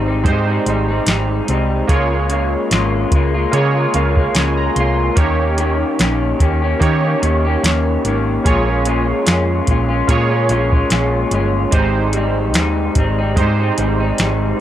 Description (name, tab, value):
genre	indie pop, bedroom pop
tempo	73 BPM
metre	4/4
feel	swing 55% on 16ths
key	Ab major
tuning	A4 = 440 Hz
part	electric guitar through a small old amp	accompaniment	0.0-14.6 s	Ab2 to G4	-19 LUFS	left 3 dB	analog chorus, vibrato effect
part	warm analog keys	accompaniment	0.0-14.6 s	Ab3 to C6	-20 LUFS	right 5 dB	chorus, cassette tape
part	hollow-body short-scale fingered electric bass	bass	0.0-14.5 s	G1 to Eb3	-18 LUFS	equal	none
part	soft vintage rhythm box	drums	0.2-14.4 s	hi-hat, kick drum, snare drum	-17 LUFS	equal	none
room	light reverb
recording	none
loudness	-14 LUFS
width	side -11 dB against mid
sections	0.0-14.6 A section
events	synth keys fill 3.5-5.2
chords	0.0 Abmaj7; 1.9 Db6; 5.2 Eb7; 8.4 Bbm7; 11.7 Abmaj7